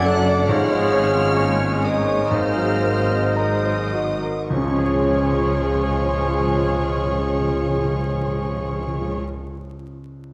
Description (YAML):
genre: classical, romantic movement for piano and orchestra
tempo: 50-71 BPM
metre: 4/4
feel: rubato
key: Db major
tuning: A4 = 435 Hz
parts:
  - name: clear grand piano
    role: melody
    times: 0.0-10.3 s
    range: Db2 to D6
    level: -27 LUFS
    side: equal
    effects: none
  - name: rich studio violin section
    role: melody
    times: 0.0-9.2 s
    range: Db6 to F#6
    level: -35 LUFS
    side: equal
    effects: none
  - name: bright clarinet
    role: second line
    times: 0.0-9.2 s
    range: Db4 to Bb4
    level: -36 LUFS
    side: equal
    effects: none
  - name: clear studio violin section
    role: second line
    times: 0.0-9.2 s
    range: Ab4 to F#5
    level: -34 LUFS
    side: equal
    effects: none
  - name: mellow cor anglais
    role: second line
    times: 0.0-9.2 s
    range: Ab4 to D5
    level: -34 LUFS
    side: equal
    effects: none
  - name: mellow hollow concert flute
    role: second line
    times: 0.0-9.2 s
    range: Db5 to F#5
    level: -33 LUFS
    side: equal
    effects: none
  - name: clear bassoon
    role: accompaniment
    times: 0.0-9.2 s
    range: F3 to Eb4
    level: -32 LUFS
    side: equal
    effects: none
  - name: rich studio viola section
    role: accompaniment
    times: 0.0-9.2 s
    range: F3 to F4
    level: -32 LUFS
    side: equal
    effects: none
  - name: clear trombone section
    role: sustained chords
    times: 0.0-9.2 s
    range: F3 to Ab3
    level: -34 LUFS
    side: equal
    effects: none
  - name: mellow French horn section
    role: sustained chords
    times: 0.0-9.2 s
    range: A3 to A4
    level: -31 LUFS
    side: equal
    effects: none
  - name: warm trumpet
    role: stabs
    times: 0.0-9.2 s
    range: C5 to D5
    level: -33 LUFS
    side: equal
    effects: none
  - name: clear studio cello section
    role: bass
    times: 0.0-9.2 s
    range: F#2 to Db3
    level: -30 LUFS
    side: equal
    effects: none
  - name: warm studio double bass section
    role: bass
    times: 0.0-9.2 s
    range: F#1 to Db2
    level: -30 LUFS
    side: equal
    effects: none
  - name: timpani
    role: percussion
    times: 0.5-9.2 s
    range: Ab2 to Db3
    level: -30 LUFS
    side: equal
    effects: none
room: wet scoring stage reverb, RT60 1.8 s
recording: vinyl crackle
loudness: -20 LUFS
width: mono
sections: 0.0-4.5 A section; 4.5-8.9 B section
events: slowing down 0.0-4.5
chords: 0.5 Db/Ab; 2.3 Ab9; 4.5 Db